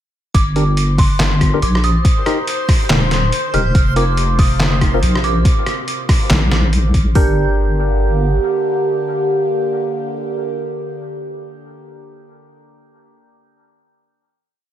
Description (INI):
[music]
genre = deep dubstep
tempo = 141 BPM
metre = 4/4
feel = swing 60% on 16ths, half-time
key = G minor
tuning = A4 = 440 Hz
[part]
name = dark detuned synth bell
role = melody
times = 0.3-10.4 s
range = C6 to G6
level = -25 LUFS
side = right 2 dB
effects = chorus, dub echo
[part]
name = deep soft wobble bass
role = bass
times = 0.3-8.4 s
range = Eb1 to Bb1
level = -16 LUFS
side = equal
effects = chorus
[part]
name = deep house drum kit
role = drums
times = 0.3-7.3 s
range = hi-hat, kick drum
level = -14 LUFS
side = equal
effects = none
[part]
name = trip hop sampler-style drum kit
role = drums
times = 0.3-7.0 s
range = handclaps, hi-hat, rim click, snare drum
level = -20 LUFS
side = equal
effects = none
[part]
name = backwards swelling texture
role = texture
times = 1.0-5.5 s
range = C5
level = -27 LUFS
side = left 2 dB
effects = built-in reverb
[part]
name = percussive organ stab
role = stabs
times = 0.6-10.4 s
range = C4 to Bb4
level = -24 LUFS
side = equal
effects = chorus, dub echo
[part]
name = overtone-sweeping drone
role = sustained chords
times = 4.2-10.4 s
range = C3 to G4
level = -21 LUFS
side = right 1 dB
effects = chorus, built-in reverb
[sound]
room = light reverb, digital ambience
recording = none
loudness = -13 LUFS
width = side -11 dB against mid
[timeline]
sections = 0.3-7.2 drop; 7.2-10.6 final chord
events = drop 0.3-7.2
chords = 0.3 Gm; 2.0 Eb; 3.8 Fsus4; 5.5 Bb; 7.2 Gm